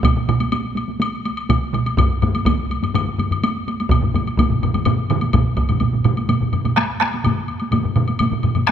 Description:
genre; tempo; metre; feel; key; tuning
japanese traditional, taiko drum ensemble; 125 BPM; 4/4; straight; none; none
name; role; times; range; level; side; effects
solo taiko drums; percussion; 0.0-5.7 s; none; -22 LUFS; right 1 dB; none
taiko ensemble; percussion; 0.0-8.7 s; none; -21 LUFS; right 4 dB; none
woodblock; percussion; 0.0-8.7 s; none; -26 LUFS; left 4 dB; none
taiko ensemble; percussion; 0.1-8.7 s; none; -24 LUFS; right 1 dB; none
taiko ensemble; percussion; 2.0-8.7 s; none; -22 LUFS; left 5 dB; none
room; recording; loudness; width
wet concert hall reverb, RT60 2.2 s; close, detailed microphones; -17 LUFS; side -9 dB against mid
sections
0.0-5.8 A section; 5.8-8.7 B section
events
none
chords
none

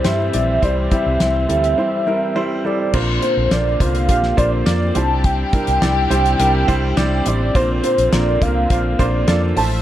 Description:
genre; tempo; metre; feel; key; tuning
piano-driven pop; 104 BPM; 4/4; straight; unclear; A4 = 441 Hz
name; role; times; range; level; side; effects
warm velvety synth lead; melody; 0.0-9.7 s; C5 to A5; -20 LUFS; equal; chorus
clear upright piano; accompaniment; 0.0-9.8 s; A2 to D5; -21 LUFS; right 2 dB; none
warm studio string section; sustained chords; 0.0-9.8 s; C3 to E5; -27 LUFS; left 1 dB; none
damped 70s drum kit; drums; 0.0-9.7 s; crash cymbal, hi-hat, kick drum, snare drum; -20 LUFS; left 1 dB; none
vintage muted fingered electric bass; bass; 0.1-9.8 s; A1 to G2; -20 LUFS; equal; none
room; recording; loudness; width
light reverb, small room ambience; dark, warm production; -15 LUFS; side -12 dB against mid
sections
0.0-2.9 A section; 2.9-9.8 B section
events
break 1.8-2.9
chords
0.0 C; 2.9 Bbadd9; 5.0 Cadd9; 7.6 Bbadd9

